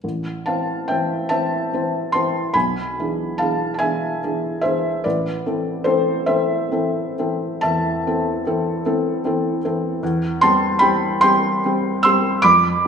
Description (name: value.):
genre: classical, romantic nocturne for solo piano.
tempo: 42-51 BPM (dotted quarters).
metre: 12/8.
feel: rubato.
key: A minor.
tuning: A4 = 442 Hz.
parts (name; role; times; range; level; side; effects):
felt-muted upright piano; solo; 0.0-12.9 s; A1 to E6; -17 LUFS; equal; none.
room: wet recital hall reverb, RT60 1.3 s.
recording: recorded in a church or concert hall.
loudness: -17 LUFS.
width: side -6 dB against mid.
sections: 0.0-12.9 A section.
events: none.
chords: 0.0 Am; 2.5 E7/B; 5.0 Am; 10.0 C/E.